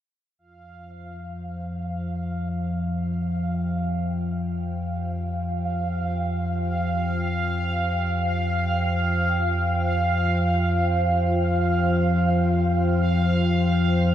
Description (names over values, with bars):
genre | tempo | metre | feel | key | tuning
dark ambient drone | free time | none | none | unclear | A4 = 440 Hz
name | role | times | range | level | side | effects
dark analog pad | sustained chords | 0.8-14.1 s | F4 to G5 | -32 LUFS | right 1 dB | chorus, shimmer reverb
deep rumbling drone | drone | 0.8-14.1 s | F2 to F3 | -23 LUFS | left 1 dB | built-in reverb
bubbling stepped-filter texture | texture | 0.6-14.1 s | F5 | -28 LUFS | right 1 dB | chorus, built-in reverb, shimmer reverb
room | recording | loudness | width
wet huge ambient reverb, RT60 8.6 s | nothing above 10.9 kHz | -22 LUFS | side -11 dB against mid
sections
0.4-14.1 A section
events
fade-in on analog synth pad 0.4-14.1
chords
0.4 Fsus2